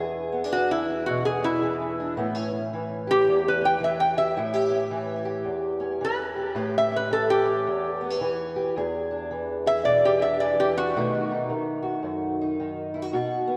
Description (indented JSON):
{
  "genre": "acoustic country blues, solo or duo",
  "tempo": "109 BPM",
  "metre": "4/4",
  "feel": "swing 64% on 8ths",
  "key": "unclear",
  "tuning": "A4 = 441 Hz",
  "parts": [
    { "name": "fingerpicked steel-string acoustic guitar", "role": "accompaniment", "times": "0.0-13.6 s", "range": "E2 to G#4", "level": "-30 LUFS", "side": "equal", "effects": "lush chorus" },
    { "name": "metal-body resonator slide guitar", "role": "melody", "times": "0.5-11.3 s", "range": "E4 to G5", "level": "-26 LUFS", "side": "equal", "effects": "analog delay" }
  ],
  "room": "wet lush hall reverb, RT60 2.9 s",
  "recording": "dreamy mix soaked in reverb",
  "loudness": "-25 LUFS",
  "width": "mono",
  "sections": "0.0-13.6 A section",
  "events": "resonator guitar played with a steel bar solo 0.0-13.6",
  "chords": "0.0 E7; 2.2 A7; 8.8 E7; 11.0 B7"
}